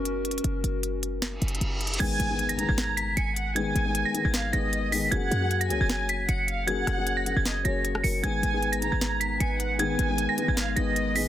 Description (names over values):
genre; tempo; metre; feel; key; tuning
hip hop, trap; 154 BPM; 4/4; half-time; G# minor; A4 = 439 Hz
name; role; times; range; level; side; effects
warbly tape-like pad; sustained chords; 0.0-2.0, 8.7-11.3 s; G#3 to B4; -34 LUFS; left 1 dB; chorus, built-in reverb
short 808-style bass; bass; 0.0-11.3 s; F#1 to F#2; -29 LUFS; equal; none
trap drum kit; drums; 0.1-11.3 s; crash cymbal, hi-hat, rim click, snare drum; -31 LUFS; equal; none
reverse cymbal and impact; sound effects; 1.4-3.6 s; none; -36 LUFS; right 1 dB; none
dark detuned synth bell; melody; 2.0-11.3 s; G#6 to C#7; -29 LUFS; right 3 dB; chorus
warm studio violin section; second line; 2.0-11.3 s; C#5 to A#5; -34 LUFS; right 1 dB; digital delay
dark concert grand piano; accompaniment; 2.0-11.3 s; D#3 to A#4; -31 LUFS; left 6 dB; none
room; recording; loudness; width
light reverb; dense, heavily limited modern master; -24 LUFS; side -12 dB against mid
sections
0.0-2.0 A section; 2.0-11.3 B section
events
break 0.0-2.0; reverse cymbal 1.4-2.0; impact 2.0-3.6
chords
0.0 F#add9; 2.0 G#m; 5.1 F#add9; 8.2 G#m